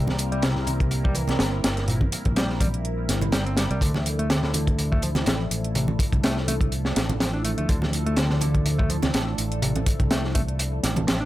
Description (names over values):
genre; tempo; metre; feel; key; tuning
breakbeat, breaks; 124 BPM; 4/4; swing 54% on 16ths; D minor; A4 = 440 Hz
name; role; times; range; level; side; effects
phased analog pad; sustained chords; 0.0-11.3 s; F3 to Bb4; -31 LUFS; left 1 dB; phaser, chorus, sidechain pumping
modern bright picked electric bass; riff; 0.0-11.3 s; Bb2 to D4; -29 LUFS; equal; tube saturation, vintage 12-bit sampler grit, dub echo
fingered electric bass; bass; 0.0-11.3 s; G1 to D2; -27 LUFS; equal; none
crunchy breakbeat drum kit; drums; 0.1-11.2 s; hi-hat, kick drum, snare drum; -24 LUFS; equal; none
congas; percussion; 0.1-11.1 s; none; -30 LUFS; right 2 dB; none
electronic hi-hat; drums; 0.2-11.2 s; none; -34 LUFS; right 2 dB; none
room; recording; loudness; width
light reverb; none; -21 LUFS; side -15 dB against mid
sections
0.0-11.3 A section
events
none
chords
0.0 C7; 3.8 Dmadd9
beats
0.43 0.92 1.40 | 1.88 2.37 2.85 3.33 | 3.82 4.30 4.79 5.27 | 5.75 6.24 6.72 7.21 | 7.69 8.17 8.66 9.14 | 9.62 10.11 10.59 11.08